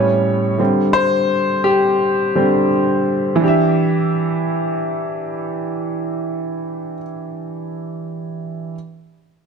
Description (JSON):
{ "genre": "soul", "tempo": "85 BPM", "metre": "4/4", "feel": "swing 54% on 16ths", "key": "E minor", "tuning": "A4 = 440 Hz", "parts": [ { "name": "clear baby grand piano", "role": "solo", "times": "0.0-8.8 s", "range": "A2 to E5", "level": "-16 LUFS", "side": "equal", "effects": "none" } ], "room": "moderate echo chamber reverb, RT60 1.8 s", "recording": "dark, warm production", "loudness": "-15 LUFS", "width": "side -6 dB against mid", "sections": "0.0-3.4 A section; 3.4-6.2 B section", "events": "grand piano solo 0.0-3.4", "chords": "0.0 A7; 0.6 D7sus4; 3.4 Em7" }